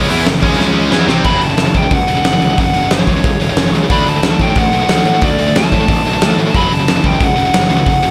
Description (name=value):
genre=heavy metal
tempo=182 BPM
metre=4/4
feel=straight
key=F# minor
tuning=A4 = 440 Hz
part: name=heavy high-gain guitar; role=riff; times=0.0-8.1 s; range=F#2 to E4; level=-22 LUFS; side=equal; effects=distortion, slapback echo
part: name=heavy high-gain guitar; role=riff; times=0.0-1.2 s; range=F#2 to E4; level=-25 LUFS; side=equal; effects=none
part: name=tight distorted guitar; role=riff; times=0.0-8.1 s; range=F#2 to E4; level=-22 LUFS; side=equal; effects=distortion
part: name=fuzz picked electric bass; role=bass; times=0.0-8.1 s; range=E1 to A2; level=-20 LUFS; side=equal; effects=overdrive
part: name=big rock drum kit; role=drums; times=0.1-8.1 s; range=crash cymbal, hi-hat, kick drum, snare drum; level=-17 LUFS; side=equal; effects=none
part: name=high-gain lead guitar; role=melody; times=1.3-8.1 s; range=C#5 to B5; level=-19 LUFS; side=equal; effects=distortion
room=moderate lush hall reverb, RT60 1.9 s, studio reverb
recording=big arena sound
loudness=-13 LUFS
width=mono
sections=0.0-1.3 A section; 1.3-8.1 B section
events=drum fill 0.6-1.3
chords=0.0 F#5; 0.6 C#5; 0.9 Cmaj7; 1.3 F#5; 3.9 D; 6.5 F#m